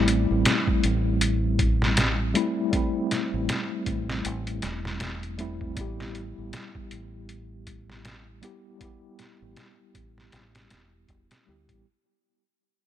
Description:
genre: trip hop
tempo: 79 BPM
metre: 4/4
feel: swing 59% on 16ths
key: unclear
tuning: A4 = 439 Hz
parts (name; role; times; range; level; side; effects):
- mellow tine electric piano; accompaniment; 0.0-11.9 s; G3 to G4; -28 LUFS; left 1 dB; medium stereo tremolo, low-pass filter, tape echo
- deep dub fingered electric bass; bass; 0.0-11.8 s; E1 to D2; -29 LUFS; equal; none
- trip hop sampler-style drum kit; drums; 0.1-11.8 s; hi-hat, kick drum, snare drum; -27 LUFS; equal; none
room: light reverb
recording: none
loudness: -23 LUFS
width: side -11 dB against mid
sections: 0.0-11.8 A section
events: fade-out 0.0-11.8; filter sweep on tine electric piano 0.0-11.8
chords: 0.0 Am7; 5.8 Em/A

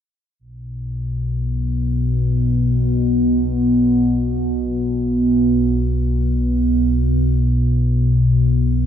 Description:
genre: ambient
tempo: free time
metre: none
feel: none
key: unclear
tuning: A4 = 437 Hz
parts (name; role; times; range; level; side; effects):
- analog drone; solo; 0.7-8.9 s; B1 to B2; -16 LUFS; equal; chorus
room: wet cathedral reverb, RT60 5.5 s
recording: in a vast, echoing space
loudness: -16 LUFS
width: side -9 dB against mid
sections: 0.4-8.9 A section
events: none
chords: none

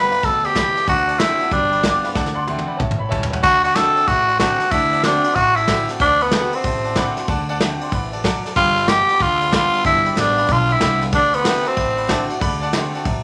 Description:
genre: rockabilly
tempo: 187 BPM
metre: 4/4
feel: swing 64% on 8ths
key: D mixolydian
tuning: A4 = 440 Hz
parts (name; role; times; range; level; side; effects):
- raspy tenor saxophone; melody; 0.0-12.3 s; B3 to B4; -18 LUFS; equal; none
- picked steel-string acoustic guitar; accompaniment; 0.0-13.2 s; F#2 to F#4; -30 LUFS; equal; none
- warm upright piano; accompaniment; 0.0-13.2 s; C#5 to D6; -30 LUFS; equal; none
- upright bass; bass; 0.0-13.2 s; G1 to D2; -30 LUFS; equal; none
- soft brush drum kit; drums; 0.1-13.2 s; crash cymbal, kick drum, ride cymbal, snare drum, toms; -25 LUFS; equal; none
room: light reverb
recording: none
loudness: -18 LUFS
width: mono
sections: 0.0-3.4 A section; 3.4-13.2 A section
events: drum fill 2.2-3.4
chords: 0.0 G7; 0.9 D7; 1.5 G7; 2.2 D7; 2.8 A7; 3.4 D7; 8.6 G7; 11.1 D7

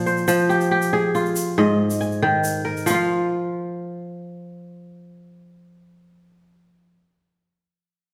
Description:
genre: west african traditional, West African string and xylophone music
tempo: 93 BPM (dotted quarters)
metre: 12/8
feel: straight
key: F minor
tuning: A4 = 440 Hz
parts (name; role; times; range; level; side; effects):
- kora; arpeggios; 0.0-7.0 s; Ab2 to A5; -22 LUFS; equal; none
- tube shaker; percussion; 0.1-3.1 s; none; -35 LUFS; equal; none
room: wet recital hall reverb, RT60 1.6 s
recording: recorded in a church or concert hall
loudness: -21 LUFS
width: mono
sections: 0.0-2.9 A section; 2.9-5.5 B section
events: none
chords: 0.3 Fm; 1.6 Ab5; 2.9 Fsus4

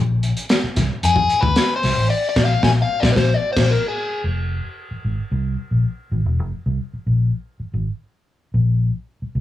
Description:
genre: funk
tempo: 112 BPM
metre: 4/4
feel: straight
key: F dorian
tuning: A4 = 442 Hz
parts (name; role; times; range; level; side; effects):
- vintage muted fingered electric bass; bass; 0.0-9.4 s; E1 to F2; -19 LUFS; left 1 dB; none
- crunchy breakbeat drum kit; drums; 0.2-3.7 s; crash cymbal, hi-hat, kick drum, snare drum; -21 LUFS; equal; none
- overdriven electric guitar; accompaniment; 1.0-4.2 s; Ab4 to Ab5; -20 LUFS; left 4 dB; wah, plate reverb
room: light reverb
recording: none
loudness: -17 LUFS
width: side -13 dB against mid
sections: 0.0-4.2 A section; 4.2-9.4 B section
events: overdriven electric guitar solo 0.0-4.2; band accent 2.1-4.2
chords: 0.0 Bbadd9; 4.2 Fmadd11; 8.5 N.C.

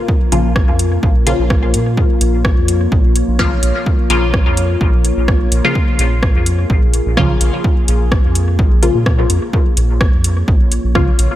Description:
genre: dub techno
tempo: 127 BPM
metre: 4/4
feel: swing 54% on 16ths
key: Bb minor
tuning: A4 = 440 Hz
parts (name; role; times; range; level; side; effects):
- deep dark ambient pad; sustained chords; 0.0-11.4 s; Bb3 to Db5; -22 LUFS; left 2 dB; chorus, built-in reverb, sidechain pumping
- electronic kick drum; drums; 0.1-11.1 s; none; -14 LUFS; equal; overdrive, small room ambience
- filtered dub chord stab; stabs; 0.3-11.1 s; Db3 to F4; -20 LUFS; left 2 dB; phaser, cassette tape, sidechain pumping, dub echo
- round analog bass; bass; 0.3-11.3 s; Bb1 to Bb2; -16 LUFS; equal; sidechain pumping
- soft vintage rhythm box; drums; 0.3-11.3 s; hi-hat, rim click; -23 LUFS; equal; overdrive, small room ambience, dub echo
room: light reverb, digital ambience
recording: none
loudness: -11 LUFS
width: side -13 dB against mid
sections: 0.0-9.5 A section; 9.5-11.4 A section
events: none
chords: 0.0 Bbm

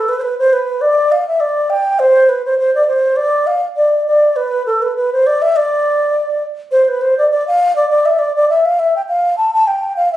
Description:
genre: celtic folk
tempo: 203 BPM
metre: 4/4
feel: swing 55% on 8ths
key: D dorian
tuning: A4 = 442 Hz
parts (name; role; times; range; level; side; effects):
- mellow baroque flute; solo; 0.0-10.2 s; A4 to A5; -12 LUFS; equal; none
room: moderate studio reverb, RT60 0.7 s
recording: recorded on a phone in the room, club reverb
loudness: -12 LUFS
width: side -14 dB against mid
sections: 0.0-6.7 A section; 6.7-10.2 B section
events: none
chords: none

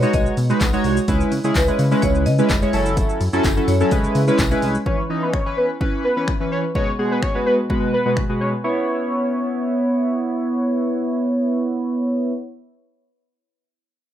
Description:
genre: dance-pop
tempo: 127 BPM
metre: 4/4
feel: straight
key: C# minor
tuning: A4 = 440 Hz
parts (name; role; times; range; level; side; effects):
- marimba with medium hard mallets; melody; 0.0-4.1 s; B4 to D#5; -26 LUFS; right 2 dB; plate reverb
- chorused polysynth; accompaniment; 0.0-12.3 s; B2 to C#5; -20 LUFS; equal; sidechain pumping, low-pass filter
- chorused synth bass; bass; 0.0-4.8 s; E#1 to C#3; -21 LUFS; left 1 dB; sidechain pumping
- punchy analog drum machine; drums; 0.0-8.3 s; finger snaps, handclaps, hi-hat, kick drum, shaker; -23 LUFS; left 1 dB; none
- tambourine; percussion; 0.0-4.7 s; none; -40 LUFS; left 6 dB; none
- fat analog lead; melody; 4.9-10.0 s; B4 to C#5; -24 LUFS; equal; chorus, sidechain pumping, low-pass filter, plate reverb
room: wet small room reverb, RT60 0.5 s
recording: rough home demo mix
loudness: -17 LUFS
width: side -11 dB against mid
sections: 0.0-4.9 A section; 4.9-8.6 B section; 8.6-12.4 C section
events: none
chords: 0.0 G#m7/B; 1.1 C#m7; 2.7 F#m7; 3.9 C#m7; 6.8 G#m7/B; 8.6 C#m7

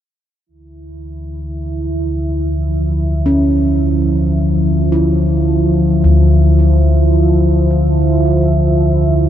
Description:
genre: dark ambient drone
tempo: 54 BPM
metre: 4/4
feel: straight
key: D harmonic minor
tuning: A4 = 440 Hz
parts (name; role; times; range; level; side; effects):
- deep dark ambient pad; sustained chords; 1.5-9.3 s; F3 to E5; -17 LUFS; right 1 dB; chorus, built-in reverb
- deep rumbling drone; drone; 0.9-9.3 s; D2 to D3; -15 LUFS; equal; built-in reverb
- gamelan-type bossed gongs; arpeggios; 3.3-9.3 s; D2 to E4; -15 LUFS; left 1 dB; tape echo
room: light reverb, small room ambience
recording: dark, warm production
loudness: -11 LUFS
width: side -10 dB against mid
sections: 0.5-9.3 A section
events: none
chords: 0.5 Dmadd9

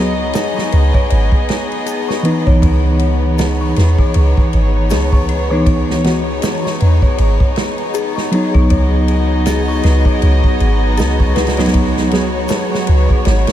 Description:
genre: trip hop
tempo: 79 BPM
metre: 4/4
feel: swing 58% on 16ths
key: C# minor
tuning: A4 = 439 Hz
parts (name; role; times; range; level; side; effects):
- bell-like tine electric piano; accompaniment; 0.0-12.3 s; E3 to G#4; -19 LUFS; equal; harmonic tremolo, tape echo
- warm chamber violin section; sustained chords; 0.0-13.5 s; B3 to D#5; -21 LUFS; left 2 dB; none
- dark detuned synth bell; arpeggios; 0.0-13.5 s; G#4 to C#6; -23 LUFS; left 3 dB; chorus, phaser, tape echo
- soft 808-style bass; bass; 0.0-13.5 s; G#1 to E2; -14 LUFS; equal; tube saturation
- natural country drum kit; drums; 0.3-13.5 s; kick drum, ride cymbal, snare drum; -18 LUFS; right 1 dB; none
- tube shaker; percussion; 0.4-12.7 s; none; -40 LUFS; left 6 dB; none
- wind-like tuned noise texture; texture; 3.7-13.5 s; G#4; -30 LUFS; right 2 dB; none
room: light reverb, small room ambience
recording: none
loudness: -12 LUFS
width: side -12 dB against mid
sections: 0.0-13.5 A section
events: none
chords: 0.0 C#m9; 8.7 B

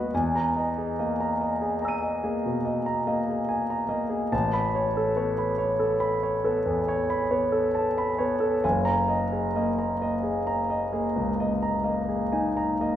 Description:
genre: classical, impressionist solo piano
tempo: 57-74 BPM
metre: 5/4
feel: rubato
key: unclear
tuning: A4 = 437 Hz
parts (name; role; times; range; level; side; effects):
- warm concert grand piano; solo; 0.0-13.0 s; Gb1 to D#7; -24 LUFS; equal; none
room: wet recital hall reverb, RT60 1.7 s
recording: heard from further back in the room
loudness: -24 LUFS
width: side -11 dB against mid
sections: 0.0-13.0 A section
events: none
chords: 0.1 Emaj7#11; 4.3 Aadd9; 8.6 Gb69

